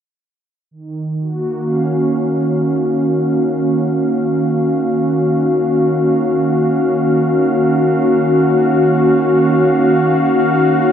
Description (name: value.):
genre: ambient.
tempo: free time.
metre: none.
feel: none.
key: Eb minor.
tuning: A4 = 439 Hz.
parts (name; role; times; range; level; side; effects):
warm analog pad; solo; 0.7-10.9 s; Eb3 to F5; -12 LUFS; equal; chorus, analog delay.
room: wet plate reverb, RT60 3.5 s.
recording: dreamy mix soaked in reverb.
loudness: -12 LUFS.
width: side -9 dB against mid.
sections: 0.7-10.9 A section.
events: none.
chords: 0.7 Ebm7.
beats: free time.